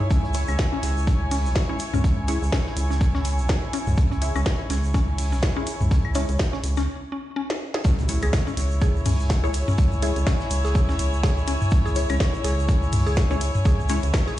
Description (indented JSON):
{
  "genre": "minimal techno",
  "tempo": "124 BPM",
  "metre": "4/4",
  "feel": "swing 57% on 16ths",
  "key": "C# minor",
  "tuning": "A4 = 440 Hz",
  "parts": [
    { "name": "mallet-like synth pluck", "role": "riff", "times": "0.0-14.3 s", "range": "C#4 to G#4", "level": "-32 LUFS", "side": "left 2 dB", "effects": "chorus, sidechain pumping, tape echo" },
    { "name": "electronic toms and claves", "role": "percussion", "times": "0.0-13.6 s", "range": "none", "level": "-27 LUFS", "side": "left 1 dB", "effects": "none" },
    { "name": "dark chamber string section", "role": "texture", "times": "0.0-14.4 s", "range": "E4 to G#5", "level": "-31 LUFS", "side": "left 1 dB", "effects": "sidechain pumping" },
    { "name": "rubbery square bass", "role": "bass", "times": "0.1-14.1 s", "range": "B1 to C#2", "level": "-24 LUFS", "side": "equal", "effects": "sidechain pumping" },
    { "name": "electronic kick drum", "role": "drums", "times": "0.1-14.2 s", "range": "none", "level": "-21 LUFS", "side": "equal", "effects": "none" },
    { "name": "loose indie drum kit", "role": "drums", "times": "0.1-14.4 s", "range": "hi-hat, snare drum", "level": "-40 LUFS", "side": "equal", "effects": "sidechain pumping on hats, high-pass filter on hats, high-pass filter on snare, high-pass filter on room" },
    { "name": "egg shaker", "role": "percussion", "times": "0.1-14.4 s", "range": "none", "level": "-40 LUFS", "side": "right 3 dB", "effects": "none" },
    { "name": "filtered dub chord stab", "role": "stabs", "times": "0.3-14.0 s", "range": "G#3 to C#5", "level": "-33 LUFS", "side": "left 3 dB", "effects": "phaser, wide subtle chorus, ping-pong delay" },
    { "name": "minimal click drum kit", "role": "drums", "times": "0.3-14.2 s", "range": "hi-hat, snare drum", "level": "-30 LUFS", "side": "equal", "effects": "none" },
    { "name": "impact", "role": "sound effects", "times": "7.8-9.8 s", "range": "none", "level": "-33 LUFS", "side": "equal", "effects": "none" }
  ],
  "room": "little or no reverb",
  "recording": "played on a big sound system in a bare room, large studio reverb, nothing above 10.7 kHz",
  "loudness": "-20 LUFS",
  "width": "side -14 dB against mid",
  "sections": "0.0-7.8 A section; 7.8-14.4 B section",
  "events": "filter sweep on synth arpeggio sound 0.0-7.8; break 6.9-7.8; drum fill 7.5-7.8; drop 7.8-14.4; impact 7.8-9.8",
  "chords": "0.0 C#m"
}